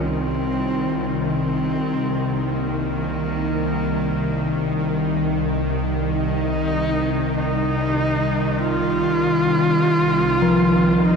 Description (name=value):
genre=dark ambient drone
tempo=free time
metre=none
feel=none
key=C minor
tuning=A4 = 440 Hz
part: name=clear horsehead fiddle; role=melody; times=0.0-11.2 s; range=Bb3 to F4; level=-24 LUFS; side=right 1 dB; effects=ping-pong delay
part: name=gamelan-type bronze metallophone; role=arpeggios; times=0.0-11.2 s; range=F3 to F4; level=-23 LUFS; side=equal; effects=ping-pong delay
part: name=bowed-like drone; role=drone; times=0.0-11.2 s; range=C2 to Eb3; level=-21 LUFS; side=equal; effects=built-in reverb
room=wet huge ambient reverb, RT60 7.8 s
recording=dark, warm production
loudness=-18 LUFS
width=side -5 dB against mid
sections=0.0-11.2 A section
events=none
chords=0.0 Cm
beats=free time